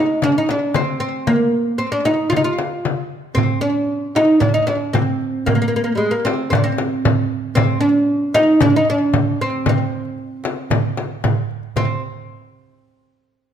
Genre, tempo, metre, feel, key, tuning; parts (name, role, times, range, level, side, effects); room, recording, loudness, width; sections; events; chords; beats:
Arabic maqam ensemble; 114 BPM; 4/4; straight; C maqam bayati; A4 = 442 Hz
oud; melody; 0.0-12.0 s; G3 to F4; -17 LUFS; right 1 dB; slapback echo
frame drum; percussion; 0.2-12.0 s; -22 LUFS; left 6 dB
darbuka; percussion; 3.4-12.0 s; -22 LUFS; right 6 dB
light reverb; close, detailed microphones; -16 LUFS; side -8 dB against mid
0.0-11.8 A section; 11.8-13.5 B section
0.22 0.74 | 1.27 1.80 2.32 2.85 | 3.37 3.90 4.42 4.95 | 5.47 6.00 6.52 7.04 | 7.57 8.09 8.62 9.14 | 9.67 10.19 10.71 11.24 | 11.76